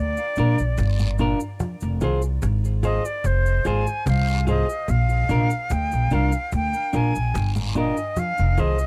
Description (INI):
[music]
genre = roots reggae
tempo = 73 BPM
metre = 4/4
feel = straight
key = unclear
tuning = A4 = 443 Hz
[part]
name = bright silver concert flute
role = melody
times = 0.0-8.9 s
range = C5 to Ab5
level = -29 LUFS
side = equal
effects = tape echo
[part]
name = upright bass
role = bass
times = 0.0-8.9 s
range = F1 to D2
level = -24 LUFS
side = equal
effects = none
[part]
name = cajon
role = drums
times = 0.2-8.9 s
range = none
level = -33 LUFS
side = equal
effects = none
[part]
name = cabasa and guiro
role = percussion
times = 0.2-8.9 s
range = none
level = -41 LUFS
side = equal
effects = none
[part]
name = clean electric guitar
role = accompaniment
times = 0.4-8.8 s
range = D4 to C5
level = -30 LUFS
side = equal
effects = warbly pitch drift, tape echo
[part]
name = electric guitar with an envelope filter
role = arpeggios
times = 1.0-8.7 s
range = Ab2 to F3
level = -30 LUFS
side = equal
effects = none
[sound]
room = small room ambience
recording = dry, close 1970s-style studio recording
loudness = -22 LUFS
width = mono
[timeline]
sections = 0.0-8.9 A section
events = none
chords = 0.0 Bb; 1.6 Fm; 4.9 Bb; 8.2 Fm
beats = 0.78 | 1.60 2.42 3.24 4.06 | 4.88 5.70 6.52 7.34 | 8.17